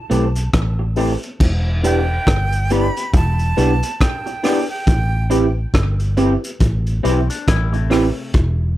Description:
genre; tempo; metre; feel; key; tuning
lovers rock reggae; 69 BPM; 4/4; swing 59% on 16ths; A minor; A4 = 441 Hz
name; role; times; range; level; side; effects
breathy bright jazz flute; melody; 0.0-5.5 s; G5 to B5; -26 LUFS; right 2 dB; tape echo
mellow tine electric piano; accompaniment; 0.1-8.1 s; C4 to B4; -20 LUFS; left 2 dB; medium stereo tremolo, slapback echo
electric guitar through a small old amp; stabs; 0.1-8.1 s; A3 to G4; -20 LUFS; right 4 dB; analog chorus
vintage muted fingered electric bass; bass; 0.1-8.8 s; E1 to B1; -18 LUFS; equal; none
crunchy breakbeat drum kit; drums; 0.1-8.6 s; crash cymbal, hi-hat, kick drum, rim click; -19 LUFS; equal; none
electric guitar with an envelope filter; arpeggios; 7.0-8.3 s; C3 to E4; -28 LUFS; left 5 dB; spring reverb
room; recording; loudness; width
little or no reverb; none; -15 LUFS; side -14 dB against mid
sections
0.0-1.4 A section; 1.4-8.8 B section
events
none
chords
0.0 Am7; 1.4 Em7; 4.9 Am7

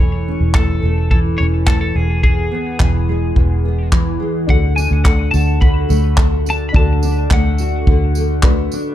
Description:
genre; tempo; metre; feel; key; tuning
acoustic pop; 106 BPM; 4/4; straight; unclear; A4 = 440 Hz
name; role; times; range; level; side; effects
twelve-string electric guitar; melody; 0.0-8.1 s; G#4 to B5; -24 LUFS; left 2 dB; ping-pong delay
fingerpicked steel-string acoustic guitar; accompaniment; 0.0-8.9 s; E2 to F#4; -20 LUFS; equal; double-tracked left and right
vintage muted fingered electric bass; bass; 0.0-8.7 s; E1 to D2; -16 LUFS; equal; none
natural country drum kit; drums; 0.5-8.8 s; handclaps, kick drum, tambourine; -15 LUFS; equal; none
dark upright piano; accompaniment; 4.5-8.9 s; D4 to B4; -29 LUFS; left 9 dB; none
room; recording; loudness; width
little or no reverb; dark, warm production; -13 LUFS; side -12 dB against mid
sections
0.0-4.5 A section; 4.5-8.9 B section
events
none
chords
0.0 A/E; 2.0 E; 4.5 D

